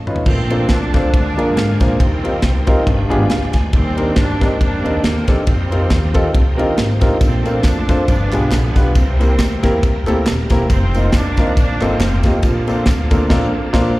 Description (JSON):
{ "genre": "uptempo gospel", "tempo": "138 BPM", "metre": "4/4", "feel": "swing 56% on 8ths", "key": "Bb major", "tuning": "A4 = 440 Hz", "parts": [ { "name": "upright bass", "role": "bass", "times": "0.0-13.9 s", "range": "Eb1 to Bb2", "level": "-18 LUFS", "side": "equal", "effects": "none" }, { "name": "warm grand piano", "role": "accompaniment", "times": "0.1-13.9 s", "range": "G2 to Ab5", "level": "-19 LUFS", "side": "equal", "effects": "slapback echo" }, { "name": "modern studio drum kit", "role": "drums", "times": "0.1-13.9 s", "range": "crash cymbal, kick drum, ride cymbal, snare drum, toms", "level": "-16 LUFS", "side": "equal", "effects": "none" }, { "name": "bright studio string section", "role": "melody", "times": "0.3-14.0 s", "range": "D3 to D4", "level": "-24 LUFS", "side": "right 1 dB", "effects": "slapback echo, tape echo" }, { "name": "bright tonewheel organ", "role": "sustained chords", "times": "0.3-14.0 s", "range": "C3 to Bb4", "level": "-29 LUFS", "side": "right 2 dB", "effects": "slow rotary speaker, overdrive, chorus vibrato" }, { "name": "mellow electric guitar", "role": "second line", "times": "6.6-7.4 s", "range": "D4 to C5", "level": "-29 LUFS", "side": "right 7 dB", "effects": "none" }, { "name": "tambourine and handclaps", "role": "percussion", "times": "7.2-13.2 s", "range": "none", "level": "-35 LUFS", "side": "equal", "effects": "slapback echo" } ], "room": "studio ambience", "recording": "live gig heard through the venue's PA, recital hall reverb", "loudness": "-13 LUFS", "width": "side -19 dB against mid", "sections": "0.3-14.0 A section", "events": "drum fill 0.0; band accent 13.3-14.0", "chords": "0.3 Bbmaj9; 1.1 Bb7/D; 2.0 Eb69; 2.9 G7b9; 3.7 Cm9/Eb; 5.5 F9sus4; 7.2 Bbmaj9; 8.1 G7b9; 9.0 C7; 10.7 F7sus4; 12.4 Bbmaj9" }